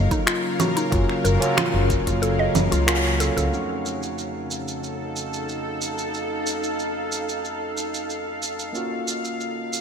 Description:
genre	organic downtempo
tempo	92 BPM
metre	4/4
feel	straight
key	F phrygian dominant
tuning	A4 = 439 Hz
part	overdriven tine electric piano	accompaniment	0.0-9.8 s	F2 to Gb4	-28 LUFS	right 2 dB	sidechain pumping, low-pass filter, digital delay
part	bowed-like drone	sustained chords	0.0-9.8 s	Db3 to F5	-28 LUFS	left 1 dB	built-in reverb, sidechain pumping
part	mallet-like synth pluck	arpeggios	0.0-3.5 s	Eb4 to Eb5	-26 LUFS	equal	chorus, digital delay
part	upright bass	bass	0.0-3.5 s	Gb1 to Db2	-22 LUFS	left 1 dB	none
part	deep house drum kit	drums	0.1-9.8 s	congas, finger snaps, hi-hat, shaker	-25 LUFS	right 1 dB	gated reverb
part	electronic kick drum	drums	0.1-2.2 s	none	-26 LUFS	left 1 dB	none
room	moderate lush hall reverb, RT60 1.9 s, digital ambience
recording	bright 1980s-style digital production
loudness	-21 LUFS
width	side -7 dB against mid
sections	0.0-3.5 A section; 3.5-9.8 B section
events	kick drops out 2.2-3.5; band accent 2.9-3.2; filter sweep on tine electric piano 3.5-9.8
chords	0.0 Gbmaj7; 3.5 F7b9b13; 8.7 Gbmaj7

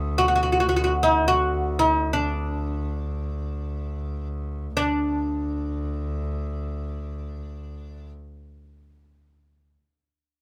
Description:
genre	Arabic maqam ensemble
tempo	free time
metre	none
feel	none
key	unclear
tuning	A4 = 439 Hz
part	oud	melody	0.0-8.1 s	D4 to F#4	-24 LUFS	equal	none
part	bright double bass	drone	0.0-8.1 s	D2	-31 LUFS	equal	none
room	light reverb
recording	none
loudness	-25 LUFS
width	mono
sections	0.0-4.8 A section; 4.8-10.4 B section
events	slowing down 0.0-4.8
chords	none

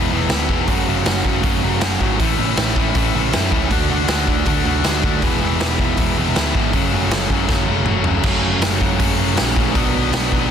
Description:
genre	punk rock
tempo	159 BPM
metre	4/4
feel	straight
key	unclear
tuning	A4 = 440 Hz
part	overdriven electric guitar	riff	0.0-10.5 s	E2 to D4	-21 LUFS	left 16 dB	none
part	overdriven electric guitar	riff	0.0-10.5 s	F#2 to F#4	-22 LUFS	right 12 dB	none
part	overdriven picked electric bass	bass	0.0-10.5 s	E1 to F#2	-23 LUFS	equal	none
part	raw garage drum kit	drums	0.3-10.4 s	crash cymbal, hi-hat, kick drum, snare drum, toms	-20 LUFS	equal	none
room	light reverb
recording	dense, heavily limited modern master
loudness	-15 LUFS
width	side -8 dB against mid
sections	0.0-8.2 A section; 8.2-10.5 B section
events	drum fill 7.5-8.2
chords	0.0 E; 0.7 F#m; 2.2 A; 3.7 D; 5.2 E; 6.7 F#m; 9.8 Bm

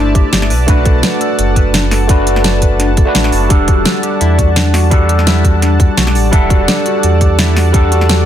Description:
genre	liquid drum and bass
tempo	170 BPM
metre	4/4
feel	swing 54% on 16ths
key	E minor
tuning	A4 = 440 Hz
part	overdriven tine electric piano	accompaniment	0.0-8.3 s	G3 to F#5	-16 LUFS	equal	phaser, tape echo
part	warm analog pad	sustained chords	0.0-8.3 s	D5 to A5	-22 LUFS	right 1 dB	chorus, sidechain pumping
part	mellow electric guitar	arpeggios	0.0-8.2 s	D4 to B4	-21 LUFS	left 3 dB	wide subtle chorus, tape echo
part	sub bass with octave	bass	0.0-8.3 s	E1 to E2	-13 LUFS	equal	tube saturation
part	electronic kick drum	drums	0.1-7.8 s	none	-11 LUFS	equal	none
part	pop drum kit	drums	0.2-8.2 s	hi-hat, snare drum	-16 LUFS	equal	none
room	digital ambience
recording	dense, heavily limited modern master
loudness	-9 LUFS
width	side -10 dB against mid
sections	0.0-8.3 A section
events	none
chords	0.0 C69; 0.5 Bm7; 3.5 Em11

